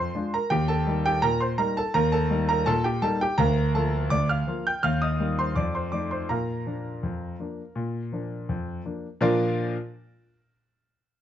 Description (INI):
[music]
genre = ragtime piano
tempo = 83 BPM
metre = 2/4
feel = straight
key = Bb major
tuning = A4 = 440 Hz
[part]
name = clear concert grand piano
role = solo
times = 0.0-9.8 s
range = D2 to G6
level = -23 LUFS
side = equal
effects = none
[sound]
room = light reverb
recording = dark, warm production, nothing above 7.7 kHz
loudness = -23 LUFS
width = side -10 dB against mid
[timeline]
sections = 0.0-9.2 A section; 9.2-10.7 B section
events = none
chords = 0.0 Bb7; 0.5 Eb; 3.4 Bb/D; 4.8 Eb; 5.6 F7; 6.3 Bb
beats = | 0.52 1.24 | 1.95 2.67 | 3.39 4.11 | 4.83 5.56 | 6.29 7.03 | 7.76 8.49 | 9.22